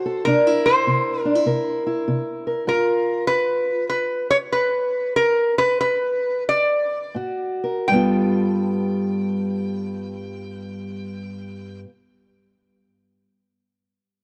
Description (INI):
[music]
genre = acoustic country blues, solo or duo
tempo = 80-100 BPM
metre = 4/4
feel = swing 65% on 8ths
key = G mixolydian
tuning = A4 = 442 Hz
[part]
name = lap resonator guitar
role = melody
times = 0.0-11.8 s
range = Bb4 to G5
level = -22 LUFS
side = equal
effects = none
[part]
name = fingerpicked steel-string acoustic guitar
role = accompaniment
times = 0.0-11.9 s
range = G2 to Bb4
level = -24 LUFS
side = equal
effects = none
[sound]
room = moderate plate reverb, RT60 3.5 s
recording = dark, warm production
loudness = -21 LUFS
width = mono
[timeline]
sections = 0.0-7.9 A section; 7.9-10.9 B section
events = slowing down 2.7-7.9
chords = 0.3 C7; 2.7 G7; 7.2 Absus2; 7.9 G9